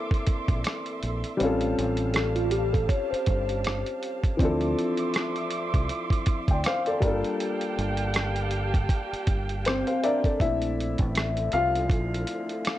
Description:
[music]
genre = lo-fi hip hop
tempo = 80 BPM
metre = 4/4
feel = swing 57% on 16ths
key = unclear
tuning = A4 = 440 Hz
[part]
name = dark upright piano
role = accompaniment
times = 0.0-12.8 s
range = E3 to G5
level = -28 LUFS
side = left 2 dB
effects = cassette tape, low-pass filter
[part]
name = warm studio string section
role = sustained chords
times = 0.0-12.8 s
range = D3 to D6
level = -35 LUFS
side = right 2 dB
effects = low-pass filter
[part]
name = lo-fi sampler-style drum kit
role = drums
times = 0.1-12.8 s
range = hi-hat, kick drum, rim click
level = -26 LUFS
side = right 1 dB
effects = none
[part]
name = deep dub fingered electric bass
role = bass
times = 0.5-12.2 s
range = G1 to D2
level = -30 LUFS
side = right 1 dB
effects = none
[part]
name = mellow tine electric piano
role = second line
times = 2.1-4.2 s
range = E#4 to C#5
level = -29 LUFS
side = equal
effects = medium stereo tremolo, low-pass filter, analog delay
[sound]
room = light reverb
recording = cassette tape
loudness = -24 LUFS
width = side -13 dB against mid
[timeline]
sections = 0.0-10.4 A section; 10.4-12.8 B section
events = upright piano solo 10.4-12.8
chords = 0.0 Bbmaj9#11; 1.4 A7alt; 4.4 Dm9; 7.0 Gm9; 10.4 Bbmaj9#11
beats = 0.65 | 1.40 2.15 2.90 3.65 | 4.40 5.15 5.90 6.65 | 7.40 8.15 8.90 9.65 | 10.40 11.15 11.90 12.65

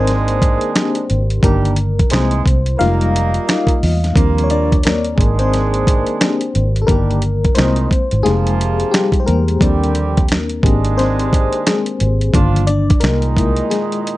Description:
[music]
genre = R&B, neo-soul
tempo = 88 BPM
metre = 4/4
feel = swing 60% on 16ths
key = unclear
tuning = A4 = 440 Hz
[part]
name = FM electric piano with tremolo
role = accompaniment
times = 0.0-14.2 s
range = Eb3 to F5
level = -19 LUFS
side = left 4 dB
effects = none
[part]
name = mellow horn section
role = stabs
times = 0.0-14.2 s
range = Bb2 to Bb4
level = -22 LUFS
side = right 5 dB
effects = none
[part]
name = vintage muted fingered electric bass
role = bass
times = 0.0-13.6 s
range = F1 to E2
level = -17 LUFS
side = equal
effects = none
[part]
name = dusty soul sampler-style drum kit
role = drums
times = 0.1-14.2 s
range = finger snaps, hi-hat, kick drum, snare drum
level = -16 LUFS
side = equal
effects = overdrive
[sound]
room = little or no reverb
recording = dark, warm production, nothing above 10.4 kHz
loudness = -13 LUFS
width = side -17 dB against mid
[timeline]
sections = 0.0-14.2 A section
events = FM electric piano solo 0.0-14.2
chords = 0.0 Abmaj9#11; 1.4 Ebmaj7/G; 2.1 C7alt; 2.8 Fm11; 4.2 Ebmaj13; 5.2 Abmaj9#11; 6.9 Ebmaj7/G; 7.6 C7alt; 8.2 Fm11; 9.6 Ebmaj13; 10.6 Abmaj9#11; 12.3 Ebmaj9/G; 13.0 C7alt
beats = 0.06 0.74 | 1.43 2.11 2.79 3.47 | 4.15 4.84 5.52 6.20 | 6.88 7.56 8.24 8.93 | 9.61 10.29 10.97 11.65 | 12.34 13.02 13.70

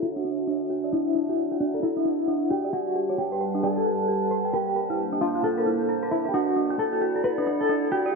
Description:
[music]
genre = IDM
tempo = 133 BPM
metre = 4/4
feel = swing 62% on 16ths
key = D major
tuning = A4 = 440 Hz
[part]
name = mellow electric guitar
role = melody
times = 0.0-8.1 s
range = D4 to B4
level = -26 LUFS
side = left 2 dB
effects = tremolo, dub echo
[part]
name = warbly tape-like pad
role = sustained chords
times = 0.0-8.2 s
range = G3 to A5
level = -29 LUFS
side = right 1 dB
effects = chorus, built-in reverb
[part]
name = dark detuned synth bell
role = arpeggios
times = 0.0-8.1 s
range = D4 to G5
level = -28 LUFS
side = right 3 dB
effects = chorus, low-pass filter, ping-pong delay
[sound]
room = moderate plate reverb, RT60 1.6 s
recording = low-pass filter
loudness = -23 LUFS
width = side -3 dB against mid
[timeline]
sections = 0.0-8.2 A section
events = filter sweep on synth bell 0.0-8.2; filter sweep 0.0-8.2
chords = 0.0 Dmaj9; 2.7 Gmaj9; 4.5 Bbmaj9; 6.3 Dadd9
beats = 0.02 0.47 | 0.93 1.38 1.83 2.28 | 2.73 3.18 3.63 4.08 | 4.54 4.99 5.44 5.89 | 6.34 6.79 7.24 7.69 | 8.14

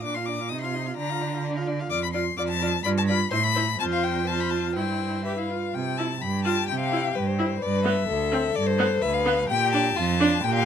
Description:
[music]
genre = quick classical-period movement for string quartet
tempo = 127 BPM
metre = 2/4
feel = straight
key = C major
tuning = A4 = 440 Hz
[part]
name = warm violin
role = melody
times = 0.0-10.7 s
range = B4 to Eb6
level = -28 LUFS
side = left 8 dB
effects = none
[part]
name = dark violin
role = second line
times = 0.0-10.7 s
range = F4 to F5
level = -29 LUFS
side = left 4 dB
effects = none
[part]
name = rich viola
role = accompaniment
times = 0.0-10.3 s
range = B3 to G4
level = -28 LUFS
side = right 2 dB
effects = none
[part]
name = rich cello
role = bass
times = 0.0-10.7 s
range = D2 to D3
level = -28 LUFS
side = right 4 dB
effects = none
[sound]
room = light reverb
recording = close, detailed microphones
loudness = -22 LUFS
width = side -8 dB against mid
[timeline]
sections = 0.0-5.7 A section; 5.7-10.7 B section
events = none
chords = 0.0 Bb; 0.5 F5/C; 1.0 Bb/D; 1.9 Dm/F; 2.8 G7; 3.3 Am; 3.8 F5; 4.8 C/G; 5.3 G; 5.7 C; 6.2 G7; 6.7 C; 7.6 G; 8.1 D5; 8.6 G; 9.5 Bb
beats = | 0.03 0.50 | 0.98 1.45 | 1.91 2.38 | 2.85 3.32 | 3.79 4.27 | 4.76 5.25 | 5.74 6.22 | 6.69 7.16 | 7.62 8.09 | 8.55 9.02 | 9.49 9.97 | 10.44

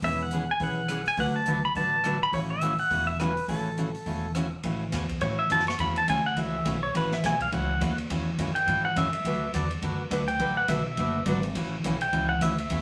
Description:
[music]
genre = country, western swing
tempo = 208 BPM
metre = 4/4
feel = swing 59% on 8ths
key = A major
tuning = A4 = 438 Hz
[part]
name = pedal steel guitar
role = melody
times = 0.0-12.8 s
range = A4 to C#6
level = -30 LUFS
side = equal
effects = none
[part]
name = picked steel-string acoustic guitar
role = accompaniment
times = 0.0-12.8 s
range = C#3 to B4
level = -32 LUFS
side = equal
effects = none
[part]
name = upright bass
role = bass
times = 0.0-12.8 s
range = E1 to A2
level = -36 LUFS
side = equal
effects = none
[part]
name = swinging big-band drum kit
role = drums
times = 0.0-12.8 s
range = hi-hat, kick drum, ride cymbal, rim click, snare drum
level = -41 LUFS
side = equal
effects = none
[sound]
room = wet studio reverb, RT60 0.6 s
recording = none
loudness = -27 LUFS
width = mono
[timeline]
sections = 0.0-4.6 A section; 4.6-12.8 B section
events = pedal steel guitar solo 4.6-12.8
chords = 0.0 E6; 1.2 D6; 2.3 A6; 9.2 D6; 11.6 A6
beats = | 0.03 0.31 0.60 0.89 | 1.18 1.47 1.75 2.04 | 2.33 2.62 2.91 3.19 | 3.48 3.77 4.06 4.35 | 4.63 4.92 5.21 5.50 | 5.79 6.08 6.36 6.65 | 6.94 7.23 7.52 7.80 | 8.09 8.38 8.67 8.96 | 9.24 9.53 9.82 10.11 | 10.40 10.69 10.97 11.26 | 11.55 11.84 12.13 12.42 | 12.71

